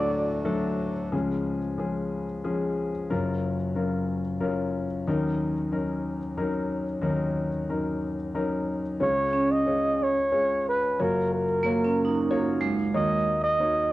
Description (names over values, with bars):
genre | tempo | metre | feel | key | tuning
folk | 91 BPM | 3/4 | straight | unclear | A4 = 438 Hz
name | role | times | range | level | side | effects
breathy flugelhorn | melody | 0.0-0.5, 9.0-13.9 s | A#4 to D#5 | -24 LUFS | right 1 dB | cassette tape
warm concert grand piano | accompaniment | 0.0-13.9 s | F#1 to C#5 | -27 LUFS | left 2 dB | cassette tape
hand-pumped harmonium | sustained chords | 0.0-1.1 s | D2 to F#3 | -35 LUFS | right 2 dB | stereo widening, cassette tape
vibraphone with hard mallets | arpeggios | 9.3-13.2 s | G#3 to D#4 | -26 LUFS | right 3 dB | cassette tape
room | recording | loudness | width
light reverb, small room reverb | home recording on cassette | -24 LUFS | side -16 dB against mid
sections
0.0-1.1 A section; 1.1-9.0 B section; 9.0-13.9 C section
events
none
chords
0.0 D; 1.1 C#; 3.1 F#maj7; 5.1 D#m7; 9.0 C#; 11.0 F#maj7; 12.9 D#m7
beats
0.46 | 1.12 1.78 2.44 | 3.10 3.75 4.41 | 5.07 5.72 6.37 | 7.03 7.69 8.35 | 9.01 9.67 10.33 | 10.98 11.64 12.30 | 12.95 13.60